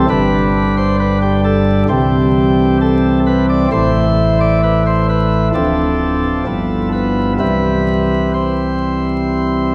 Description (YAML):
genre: classical, chorale-style piece for pipe organ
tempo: 66 BPM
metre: 4/4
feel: straight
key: C major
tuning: A4 = 439 Hz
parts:
  - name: chamber organ, principal chorus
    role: solo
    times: 0.0-9.7 s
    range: D1 to D5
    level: -15 LUFS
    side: equal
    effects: none
room: wet church reverb, RT60 3.4 s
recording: dark, warm production, vinyl crackle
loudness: -15 LUFS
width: mono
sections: 0.0-9.7 A section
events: none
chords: 0.1 G5; 1.9 C; 3.7 A5; 5.5 Dm7; 6.5 G13; 7.4 C